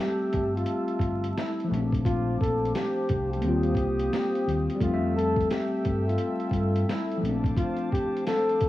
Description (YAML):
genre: lo-fi hip hop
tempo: 87 BPM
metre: 4/4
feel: swing 64% on 16ths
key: F major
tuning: A4 = 440 Hz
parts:
  - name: mellow flugelhorn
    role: melody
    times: 0.0-8.7 s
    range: E4 to A4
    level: -29 LUFS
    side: left 1 dB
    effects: low-pass filter
  - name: tine electric piano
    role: accompaniment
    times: 0.0-8.7 s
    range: F3 to E5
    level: -30 LUFS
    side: equal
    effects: medium stereo tremolo, cassette tape, low-pass filter
  - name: hollow soft pad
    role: sustained chords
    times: 0.0-8.7 s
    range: G4 to E6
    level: -36 LUFS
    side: left 1 dB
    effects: chorus, low-pass filter, cassette tape
  - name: deep dub fingered electric bass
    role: bass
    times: 0.3-7.5 s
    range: G1 to G2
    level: -29 LUFS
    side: equal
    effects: none
  - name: lo-fi sampler-style drum kit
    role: drums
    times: 0.3-8.7 s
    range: hi-hat, kick drum, snare drum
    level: -31 LUFS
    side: equal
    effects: vintage 12-bit sampler grit, cassette tape
room: digital ambience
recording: home recording on cassette, vinyl crackle, small room ambience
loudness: -24 LUFS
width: side -15 dB against mid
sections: 0.0-8.7 A section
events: none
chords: 0.0 Fmaj9; 1.7 Bbmaj9; 3.4 Eb6; 4.8 Fmaj9; 7.2 Bbmaj9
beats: 0.66 1.35 | 2.04 2.73 3.42 4.11 | 4.80 5.49 6.18 6.87 | 7.56 8.25